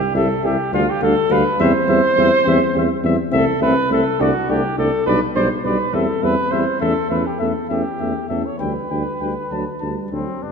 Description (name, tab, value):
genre	classical, brass quintet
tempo	69 BPM (dotted quarters)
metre	6/8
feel	straight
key	C major, G major from 3.3 s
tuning	A4 = 444 Hz
part	warm flugelhorn	second line	0.0-10.5 s	B3 to C#5	-20 LUFS	right 2 dB	none
part	dark French horn	accompaniment	0.1-10.5 s	B3 to E4	-25 LUFS	left 3 dB	none
part	mellow euphonium	accompaniment	0.1-10.5 s	F#3 to A3	-26 LUFS	right 1 dB	none
part	mellow tuba	bass	0.1-10.5 s	G1 to E2	-21 LUFS	right 2 dB	none
part	mellow cornet	melody	0.2-10.5 s	C4 to A5	-25 LUFS	left 8 dB	none
room	wet concert hall reverb, RT60 1.9 s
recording	minimal, uncompressed stereo recording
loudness	-16 LUFS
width	side -6 dB against mid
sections	0.0-10.4 A section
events	none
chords	0.0 C; 0.7 G5/D; 1.6 C/E; 3.3 Am/C; 4.2 D5/C; 5.1 G/B; 5.9 C/E; 6.8 A7/E; 8.6 G/D; 9.5 D